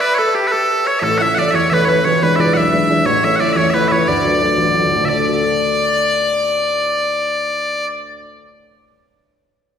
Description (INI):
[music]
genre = celtic folk, Celtic jig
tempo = 118 BPM (dotted quarters)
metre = 6/8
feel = straight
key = D major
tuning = A4 = 441 Hz
[part]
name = loud bright bagpipes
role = melody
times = 0.0-7.9 s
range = G4 to F#5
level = -16 LUFS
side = equal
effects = none
[part]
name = Celtic harp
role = second line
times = 0.0-8.4 s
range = F#4 to E5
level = -22 LUFS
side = right 2 dB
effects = none
[part]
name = rich fiddle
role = second line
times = 0.0-7.9 s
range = G4 to E5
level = -23 LUFS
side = left 3 dB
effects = none
[part]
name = dark upright piano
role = accompaniment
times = 1.0-8.6 s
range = D1 to A4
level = -18 LUFS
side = left 1 dB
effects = none
[sound]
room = wet scoring stage reverb, RT60 1.9 s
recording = recorded in a church or concert hall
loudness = -13 LUFS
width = side -8 dB against mid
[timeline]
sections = 0.0-5.1 A section; 5.1-7.1 B section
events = none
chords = 0.0 A; 2.0 E7; 3.0 A; 4.1 D